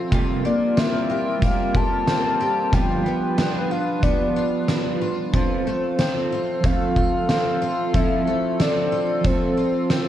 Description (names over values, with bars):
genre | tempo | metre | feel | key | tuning
dream pop | 92 BPM | 4/4 | straight | F major | A4 = 442 Hz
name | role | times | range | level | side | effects
mellow electric guitar | accompaniment | 0.0-10.1 s | G2 to A4 | -27 LUFS | right 5 dB | tremolo, analog chorus
hollow soft pad | sustained chords | 0.0-10.1 s | G3 to B4 | -27 LUFS | right 1 dB | chorus
picked twelve-string acoustic guitar | arpeggios | 0.0-10.1 s | F3 to G4 | -28 LUFS | left 3 dB | lush chorus, tape echo
oversized low-tuned drum kit | drums | 0.1-10.1 s | hi-hat, kick drum, snare drum, tambourine | -23 LUFS | equal | none
soft octave-layered synth lead | melody | 0.5-10.1 s | C5 to A5 | -25 LUFS | left 2 dB | chorus, tremolo, tape echo
room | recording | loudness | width
moderate studio reverb, RT60 0.5 s | cassette tape | -19 LUFS | side -11 dB against mid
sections
0.0-10.1 A section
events
none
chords
0.1 C7sus4; 2.7 G7; 5.3 F